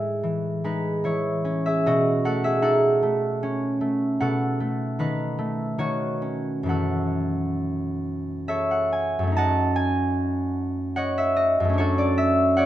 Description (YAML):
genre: classical, solo harp piece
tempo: 64-78 BPM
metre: 3/4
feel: rubato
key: F# minor from 4.2 s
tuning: A4 = 438 Hz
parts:
  - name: concert harp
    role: solo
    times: 0.0-12.7 s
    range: F#2 to A5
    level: -21 LUFS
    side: equal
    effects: none
room: moderate recital hall reverb, RT60 1.3 s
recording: close, detailed microphones, faint mains hum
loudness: -22 LUFS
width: side -13 dB against mid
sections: 0.0-9.3 A section; 9.3-12.7 B section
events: none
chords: 0.0 Amaj7; 1.9 B9; 6.7 F#m7; 9.3 F#m6; 11.8 Dmaj9/F#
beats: 0.24 1.06 | 1.86 2.64 3.42 | 4.21 4.99 5.79 | 6.69 7.58 8.47 | 9.34 10.15 10.95 | 11.76 12.56